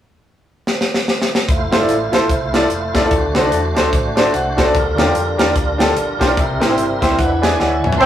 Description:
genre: uptempo gospel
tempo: 147 BPM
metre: 4/4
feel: swing 60% on 8ths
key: F major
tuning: A4 = 441 Hz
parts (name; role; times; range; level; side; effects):
- tight funk drum kit; drums; 0.7-8.1 s; crash cymbal, hi-hat, kick drum, snare drum, toms; -18 LUFS; equal; none
- tonewheel organ; sustained chords; 1.5-8.1 s; F3 to G#5; -22 LUFS; right 2 dB; chorus vibrato, fast rotary speaker
- hollow-body short-scale fingered electric bass; bass; 1.5-8.1 s; F1 to F2; -24 LUFS; equal; none
- clear baby grand piano; accompaniment; 1.7-8.1 s; C3 to A5; -16 LUFS; left 1 dB; none
- breathy tenor saxophone; melody; 8.0-8.1 s; C4; -9 LUFS; right 1 dB; none
- warm horn section; melody; 8.0-8.1 s; C4 to C5; -17 LUFS; right 4 dB; none
- warm studio string section; sustained chords; 8.0-8.1 s; C5 to C6; -18 LUFS; right 1 dB; none
room: moderate stone room reverb, RT60 1.3 s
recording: rough rehearsal-room recording, small room ambience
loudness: -14 LUFS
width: side -11 dB against mid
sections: 0.0-1.5 A section; 1.5-8.0 B section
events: drum fill 0.7-1.5, 7.6-8.0; grand piano fill 3.9-4.7, 6.8-8.0; tonewheel organ fill 7.2-8.0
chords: 0.0 N.C.; 1.5 Fmaj7; 3.1 D7; 4.7 Gm7/D; 6.4 C7; 7.2 E7

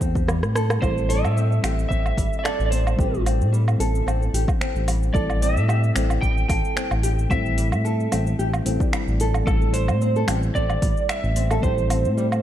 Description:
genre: organic downtempo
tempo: 111 BPM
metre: 4/4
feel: swing 53% on 16ths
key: A minor pentatonic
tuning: A4 = 440 Hz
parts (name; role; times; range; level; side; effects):
- muted felt-like synth keys; accompaniment; 0.0-12.4 s; G3 to D5; -30 LUFS; left 2 dB; chorus, sidechain pumping, digital delay
- nylon-string guitar; arpeggios; 0.0-12.3 s; G3 to A4; -30 LUFS; left 1 dB; digital delay
- smooth synth bass; bass; 0.0-12.4 s; A1 to A2; -22 LUFS; equal; none
- deep house drum kit; drums; 0.0-12.4 s; cabasa, finger snaps, hi-hat, rim click, woodblock; -29 LUFS; right 2 dB; overdrive
- electronic kick drum; drums; 0.0-11.7 s; none; -25 LUFS; equal; overdrive
- electric slide guitar; melody; 0.8-12.4 s; A4 to G5; -28 LUFS; right 3 dB; ping-pong delay
room: light reverb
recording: dark, warm production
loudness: -19 LUFS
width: side -11 dB against mid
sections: 0.0-12.4 A section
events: drum fill 0.3-0.8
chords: 0.0 Am7

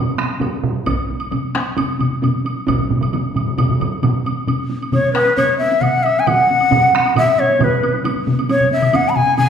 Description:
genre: japanese traditional, taiko drum ensemble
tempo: 134 BPM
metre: 4/4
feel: straight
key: F# suspended pentatonic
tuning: A4 = 435 Hz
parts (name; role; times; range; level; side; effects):
- taiko ensemble; percussion; 0.1-9.5 s; none; -23 LUFS; right 2 dB; none
- taiko ensemble; percussion; 0.2-7.7 s; none; -20 LUFS; right 3 dB; none
- woodblock; percussion; 0.2-9.5 s; none; -27 LUFS; right 3 dB; none
- taiko ensemble; percussion; 0.9-2.8 s; none; -26 LUFS; equal; none
- taiko ensemble; percussion; 1.3-9.5 s; none; -20 LUFS; left 2 dB; none
- breathy bright shakuhachi; melody; 4.9-9.5 s; B4 to B5; -14 LUFS; left 2 dB; none
room: wet recital hall reverb, RT60 1.3 s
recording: recorded in a church or concert hall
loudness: -14 LUFS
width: side -8 dB against mid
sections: 0.0-4.5 A section; 4.5-9.5 B section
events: speeding up 0.0-9.5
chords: none

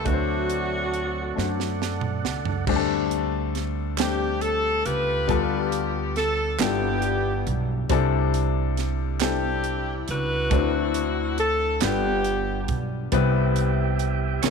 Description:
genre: slow gospel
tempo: 46 BPM (dotted quarters)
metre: 6/8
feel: straight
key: unclear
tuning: A4 = 440 Hz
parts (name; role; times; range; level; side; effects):
- breathy tenor saxophone; melody; 0.0-1.8 s; F#3 to A3; -34 LUFS; right 6 dB; none
- warm saxophone section; melody; 0.0-14.5 s; A3 to B4; -26 LUFS; equal; none
- warm grand piano; accompaniment; 0.0-14.5 s; G2 to A5; -26 LUFS; left 12 dB; none
- tonewheel organ; sustained chords; 0.0-2.7, 13.1-14.5 s; G4 to C#6; -33 LUFS; right 15 dB; slow rotary speaker
- upright bass; bass; 0.0-14.5 s; G1 to F#2; -27 LUFS; right 3 dB; none
- crisp fusion drum kit; drums; 0.1-14.5 s; crash cymbal, hi-hat, kick drum, snare drum, toms; -28 LUFS; right 8 dB; none
- group handclap; percussion; 4.0-14.5 s; none; -32 LUFS; right 17 dB; none
room: light reverb, small room ambience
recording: 1960s-style stereo with parts hard left and right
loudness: -22 LUFS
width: side -5 dB against mid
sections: 0.0-2.7 A section; 2.7-14.5 B section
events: drum fill 1.4-2.7; grand piano fill 1.4-2.7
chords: 0.1 D7; 2.7 D7sus4; 5.3 G9/D; 6.6 G13; 7.9 C69; 10.5 D9; 11.8 G7; 13.1 Cmaj7

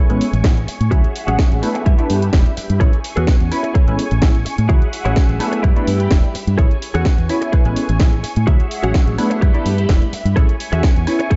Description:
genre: filtered disco house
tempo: 127 BPM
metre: 4/4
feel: straight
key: A major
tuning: A4 = 440 Hz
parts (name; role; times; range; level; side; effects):
- funky polysynth comp; accompaniment; 0.0-11.4 s; F#3 to F#4; -25 LUFS; equal; chorus, phaser, sidechain pumping, low-pass filter
- string machine, full ensemble; sustained chords; 0.0-11.4 s; G4 to C#6; -30 LUFS; equal; phaser, ensemble chorus, sidechain pumping, low-pass filter
- direct-recorded clean electric guitar; riff; 0.0-11.4 s; E4 to F#5; -29 LUFS; equal; analog chorus, sidechain pumping, low-pass filter
- fingered electric bass; bass; 0.1-11.3 s; E1 to A2; -21 LUFS; equal; tube saturation, sidechain pumping, low-pass filter
- house drum kit; drums; 0.1-11.4 s; hi-hat, rim click, snare drum; -28 LUFS; equal; sidechain pumping on hats
- tambourine; percussion; 0.1-11.4 s; none; barely audible; none; none
- electronic kick drum; drums; 0.4-11.4 s; none; -16 LUFS; equal; none
room: light reverb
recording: nothing above 7.8 kHz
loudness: -16 LUFS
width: mono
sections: 0.0-11.4 A section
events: filter sweep 0.0-11.4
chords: 0.0 Amaj7; 0.9 Dmaj9#11; 1.9 G6; 2.8 Amaj7; 4.7 Dmaj9#11; 5.6 G6; 6.6 Amaj7; 8.5 Dmaj9#11; 9.4 G6; 10.4 Amaj7

